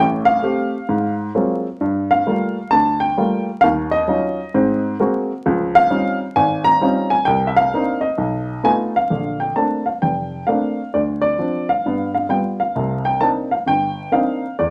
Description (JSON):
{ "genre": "solo jazz", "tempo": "131 BPM", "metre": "4/4", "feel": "swing 65% on 8ths", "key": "unclear", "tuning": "A4 = 442 Hz", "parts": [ { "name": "clear upright piano", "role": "solo", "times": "0.0-14.7 s", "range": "F1 to Bb5", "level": "-18 LUFS", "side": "equal", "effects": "none" } ], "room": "moderate large studio reverb, RT60 0.8 s", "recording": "vinyl crackle", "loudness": "-19 LUFS", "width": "mono", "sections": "0.0-9.1 A section; 9.1-14.7 B section", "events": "none", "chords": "0.0 Fadd9/A; 0.9 Ab13; 1.8 Gm9; 3.6 Ebm9; 4.5 Ab9; 5.4 Dbmaj9#11; 7.3 Cm9; 8.2 B7#11; 9.1 Bbmaj9; 10.9 Dm7; 11.8 G7; 12.8 Cm9", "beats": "0.43 0.89 1.34 | 1.80 2.25 2.71 3.17 | 3.62 4.08 4.54 4.99 | 5.45 5.90 6.36 6.82 | 7.27 7.73 8.18 8.64 | 9.10 9.55 10.01 10.47 | 10.92 11.38 11.84 12.30 | 12.75 13.21 13.67 14.12 | 14.58" }